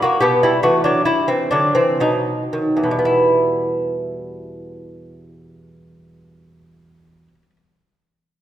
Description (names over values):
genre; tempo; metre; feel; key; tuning
classical, baroque-style dance for lute; 56-74 BPM; 3/4; rubato; E minor; A4 = 440 Hz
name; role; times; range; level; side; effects
lute; solo; 0.0-7.6 s; E2 to G4; -16 LUFS; equal; none
room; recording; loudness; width
wet recital hall reverb, RT60 1.8 s; none; -15 LUFS; side -12 dB against mid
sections
0.0-3.1 A section; 3.1-8.4 B section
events
slowing down 0.0-3.1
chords
0.2 Em/B; 2.0 B; 3.1 Em